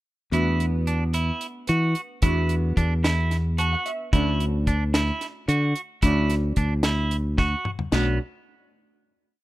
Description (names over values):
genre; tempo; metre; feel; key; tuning
progressive instrumental, band music in an uneven meter; 221 BPM (eighths); 7/8; straight; unclear; A4 = 437 Hz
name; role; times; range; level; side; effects
hollow-body jazz guitar; accompaniment; 0.3-8.2 s; A3 to A5; -30 LUFS; equal; double-tracked left and right
clean electric guitar; arpeggios; 0.3-8.2 s; B3 to F#4; -28 LUFS; right 3 dB; none
modern bright fingered electric bass; bass; 0.3-8.2 s; B1 to E3; -22 LUFS; equal; none
deep reggae drum kit; drums; 0.3-8.0 s; crash cymbal, hi-hat, kick drum, snare drum, toms; -25 LUFS; equal; none
room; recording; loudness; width
small room ambience; rough home demo mix; -21 LUFS; side -17 dB against mid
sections
0.3-7.9 A section; 7.9-9.4 final chord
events
hollow-body jazz guitar fill 3.3-4.1; drum fill 7.4-7.9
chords
0.3 E7sus4; 4.1 Dmaj9; 7.9 Bm7